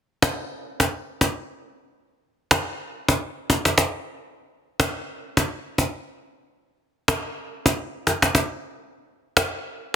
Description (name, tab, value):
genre	afrobeats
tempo	105 BPM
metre	4/4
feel	swing 55% on 16ths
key	none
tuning	none
part	cajon	drums	0.2-9.5 s	none	-20 LUFS	equal	none
room	light reverb, small room ambience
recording	dense, heavily limited modern master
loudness	-22 LUFS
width	side -9 dB against mid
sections	0.0-10.0 A section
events	none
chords	none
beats	0.35 0.93 1.50 | 2.07 2.64 3.21 3.78 | 4.35 4.92 5.50 6.07 | 6.64 7.21 7.78 8.35 | 8.93